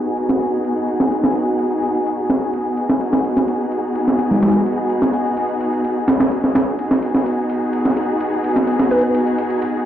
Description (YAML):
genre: breakbeat, breaks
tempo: 127 BPM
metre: 4/4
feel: straight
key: G# minor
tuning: A4 = 440 Hz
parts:
  - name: dark studio string section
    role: stabs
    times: 0.0-9.9 s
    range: B3 to G#4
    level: -18 LUFS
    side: equal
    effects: low-pass filter, digital delay
  - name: breakbeat sampler-style drum kit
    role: drums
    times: 0.2-9.7 s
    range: hi-hat, ride cymbal, snare drum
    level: -18 LUFS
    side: right 1 dB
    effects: low-pass filter on cymbals, low-pass filter on snare, low-pass filter on hats
  - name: mallet-like synth pluck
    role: melody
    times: 8.9-9.1 s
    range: B4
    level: -19 LUFS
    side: equal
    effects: chorus, phaser, small speaker sound, cassette tape, digital delay
room: moderate plate reverb, RT60 1.5 s, digital ambience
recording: played on a big sound system in a bare room, large studio reverb, low-pass filter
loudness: -16 LUFS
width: side -10 dB against mid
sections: 0.0-9.9 A section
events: filter sweep on string section 0.0-9.9; filter sweep 0.0-9.9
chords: 0.0 G#m7